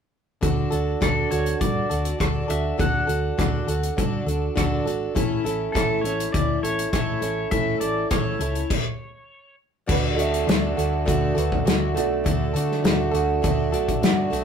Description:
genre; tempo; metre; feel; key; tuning
folk rock and heartland rock; 101 BPM; 4/4; straight; D major; A4 = 440 Hz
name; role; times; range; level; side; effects
picked plugged-in twelve-string acoustic guitar; accompaniment; 0.4-14.4 s; A2 to A4; -25 LUFS; right 2 dB; none
hollow-body short-scale fingered electric bass; bass; 0.4-14.4 s; G#1 to D3; -27 LUFS; left 1 dB; none
natural country drum kit; drums; 0.4-14.4 s; crash cymbal, hi-hat, kick drum, rim click, snare drum; -24 LUFS; left 1 dB; none
pedal steel guitar; melody; 1.0-9.6 s; A4 to F#5; -28 LUFS; left 1 dB; none
dark upright piano; second line; 9.9-13.1 s; F#4 to E5; -30 LUFS; right 6 dB; none
electric guitar through a small old amp; riff; 9.9-14.4 s; D3 to F#4; -29 LUFS; right 4 dB; none
room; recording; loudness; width
light reverb; rough rehearsal-room recording; -20 LUFS; side -7 dB against mid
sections
0.4-9.9 A section; 9.9-14.4 B section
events
stop 8.7-9.9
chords
0.4 D; 5.2 A; 9.9 D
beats
| 0.42 1.02 1.61 2.20 | 2.79 3.38 3.97 4.56 | 5.16 5.75 6.34 6.93 | 7.52 8.11 8.71 9.30 | 9.89 10.48 11.07 11.66 | 12.26 12.85 13.44 14.03

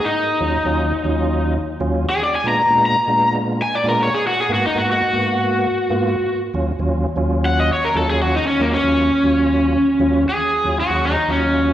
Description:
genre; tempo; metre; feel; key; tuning
blues; 117 BPM; 4/4; straight; Eb minor; A4 = 440 Hz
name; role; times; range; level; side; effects
overdriven slide guitar; melody; 0.0-11.7 s; Bb3 to Bb5; -17 LUFS; left 1 dB; slapback echo
tonewheel organ; accompaniment; 0.4-11.7 s; Eb2 to Ab4; -20 LUFS; right 1 dB; slow rotary speaker, overdrive, chorus vibrato, slapback echo
room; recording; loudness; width
light reverb; live gig heard through the venue's PA, recital hall reverb; -16 LUFS; side -12 dB against mid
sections
0.0-10.3 A section; 10.3-11.7 A section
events
electric slide guitar solo 0.0-10.3, 10.3-11.7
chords
0.0 Ebm7; 2.1 Bb7b9; 4.1 Abm7; 6.2 Ebm7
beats
| 0.01 0.53 1.04 1.55 | 2.06 2.57 3.08 3.60 | 4.11 4.62 5.13 5.65 | 6.16 6.67 7.18 7.70 | 8.21 8.72 9.23 9.75 | 10.26 10.77 11.29

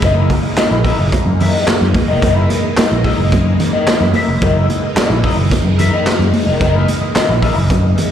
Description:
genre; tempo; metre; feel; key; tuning
funk; 109 BPM; 4/4; straight; F# mixolydian; A4 = 439 Hz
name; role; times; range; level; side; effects
electric guitar at the edge of break-up; accompaniment; 0.0-7.9 s; E4 to E5; -19 LUFS; left 4 dB; wah, spring reverb, slapback echo
phased string machine; sustained chords; 0.0-8.1 s; E3 to D#4; -19 LUFS; equal; ensemble chorus, phaser
fingered electric bass; bass; 0.0-7.9 s; E#1 to F#2; -15 LUFS; equal; none
raw garage drum kit; drums; 0.0-8.1 s; handclaps, hi-hat, kick drum, snare drum; -17 LUFS; equal; none
congas; percussion; 0.0-8.1 s; none; -22 LUFS; right 4 dB; slapback echo
room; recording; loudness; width
light reverb; live gig heard through the venue's PA, recital hall reverb; -11 LUFS; side -9 dB against mid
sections
0.0-8.1 A section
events
none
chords
0.0 F#13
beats
| 0.03 0.57 1.12 1.67 | 2.22 2.77 3.32 3.87 | 4.42 4.96 5.51 6.06 | 6.61 7.16 7.70

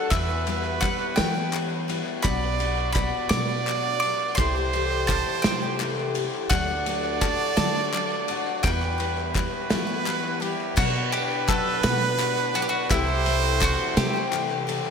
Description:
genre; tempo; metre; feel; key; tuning
indie folk with a building arrangement; 56 BPM (dotted quarters); 6/8; straight; unclear; A4 = 440 Hz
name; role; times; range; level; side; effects
mandolin; melody; 0.0-14.7 s; E4 to D6; -29 LUFS; left 1 dB; digital delay
clear trumpet; second line; 0.0-14.7 s; G4 to D5; -28 LUFS; right 8 dB; none
picked twelve-string acoustic guitar; accompaniment; 0.0-14.9 s; B2 to G4; -30 LUFS; left 8 dB; none
upright bass; bass; 0.1-14.8 s; B1 to E3; -30 LUFS; equal; none
loose indie drum kit; drums; 0.1-14.8 s; crash cymbal, kick drum, ride cymbal, snare drum; -27 LUFS; equal; gated reverb
group handclap; percussion; 0.1-14.9 s; none; -36 LUFS; left 6 dB; none
pedal harmonium; sustained chords; 10.8-14.9 s; C3 to F#5; -38 LUFS; equal; none
room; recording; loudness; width
moderate lush hall reverb, RT60 3.0 s; bright 1980s-style digital production; -22 LUFS; side -6 dB against mid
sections
0.0-10.8 A section; 10.8-14.9 A section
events
none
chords
0.1 Emadd9; 2.2 Bm; 4.4 Am7/C; 6.5 D; 8.6 Emadd9; 10.8 Bm; 12.9 Am7/C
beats
| 0.12 1.18 | 2.25 3.31 | 4.38 5.44 | 6.51 7.58 | 8.64 9.71 | 10.78 11.84 | 12.91 13.97

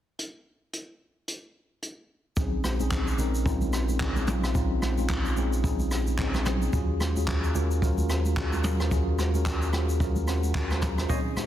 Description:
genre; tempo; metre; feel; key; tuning
amapiano; 110 BPM; 4/4; swing 58% on 16ths; Bb minor; A4 = 440 Hz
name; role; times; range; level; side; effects
jazz brush drum kit; drums; 0.2-11.5 s; handclaps, hi-hat, kick drum, rim click, shaker, toms; -29 LUFS; equal; soft clipping on snare
mellow tine electric piano; accompaniment; 2.4-11.5 s; Bb2 to Bb5; -31 LUFS; equal; medium stereo tremolo
punchy sub bass; bass; 2.4-11.1 s; Bb1 to Eb2; -28 LUFS; equal; none
congas; percussion; 2.6-11.5 s; none; -38 LUFS; right 3 dB; none
percussive organ stab; stabs; 11.1-11.2 s; Bb3 to Eb5; -33 LUFS; right 1 dB; chorus, phaser
room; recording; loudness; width
studio reverb; dense, heavily limited modern master; -24 LUFS; side -11 dB against mid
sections
0.2-2.4 A section; 2.4-11.5 B section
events
tine electric piano fill 10.0-11.1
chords
0.2 N.C.; 2.4 Bbm11; 6.7 Ebm11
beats
| 0.19 0.73 1.28 1.82 | 2.37 2.91 3.46 4.00 | 4.55 5.10 5.64 6.19 | 6.73 7.28 7.82 8.37 | 8.91 9.46 10.01 10.55 | 11.10

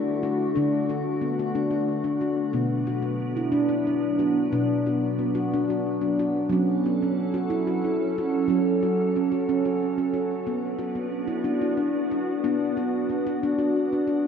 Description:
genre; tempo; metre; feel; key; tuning
world meditative, meditative tuned percussion; 61 BPM (dotted quarters); 6/8; straight; B minor; A4 = 437 Hz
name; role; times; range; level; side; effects
glassy FM pad; sustained chords; 0.0-14.3 s; D3 to A4; -27 LUFS; right 2 dB; ensemble chorus, built-in reverb, shimmer reverb
handpan; arpeggios; 0.0-14.3 s; B2 to F#4; -24 LUFS; left 1 dB; tape echo, shimmer reverb
room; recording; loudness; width
wet plate reverb, RT60 3.7 s; dreamy mix soaked in reverb; -22 LUFS; side -7 dB against mid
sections
0.0-2.5 A section; 2.5-14.3 B section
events
none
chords
0.0 D; 2.5 Bm; 6.5 F#m; 10.5 Bm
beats
| 0.56 1.55 | 2.54 3.53 | 4.52 5.51 | 6.50 7.49 | 8.48 9.47 | 10.46 11.45 | 12.45 13.44

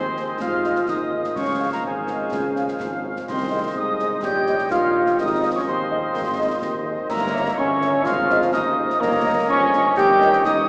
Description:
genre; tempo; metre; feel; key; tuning
military-style march for wind band; 126 BPM; 2/4; straight; Ab major; A4 = 441 Hz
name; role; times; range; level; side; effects
dark trumpet section; melody; 0.0-10.7 s; Ab4 to G5; -30 LUFS; equal; none
mellow euphonium; second line; 0.0-10.7 s; C3 to Ab3; -33 LUFS; equal; none
warm woodwind section; second line; 0.0-10.7 s; C5 to F5; -32 LUFS; equal; none
wooden piccolo; second line; 0.0-10.7 s; Ab5 to G6; -28 LUFS; equal; none
warm trombone section; sustained chords; 0.0-10.7 s; Ab3 to G4; -25 LUFS; equal; none
dark tuba; bass; 0.0-10.7 s; G1 to Ab2; -32 LUFS; equal; none
mellow French horn section; accompaniment; 0.2-10.3 s; G4 to F5; -32 LUFS; equal; none
concert snare drum, concert bass drum and clash cymbals; drums; 0.2-10.6 s; none; -38 LUFS; equal; none
room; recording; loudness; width
wet cathedral reverb, RT60 5.5 s; recorded in a church or concert hall, small speaker sound; -21 LUFS; mono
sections
0.0-10.7 A section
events
none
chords
0.0 Ab; 1.4 Dbmaj7; 3.3 Ab/C; 4.2 Eb7/Bb; 5.2 Ab; 7.1 Gdim7; 8.1 Ab; 9.0 Eb7/G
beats
| 0.41 0.89 | 1.37 1.84 | 2.32 2.80 | 3.28 3.76 | 4.24 4.71 | 5.19 5.67 | 6.15 6.63 | 7.11 7.58 | 8.06 8.54 | 9.02 9.50 | 9.97 10.45

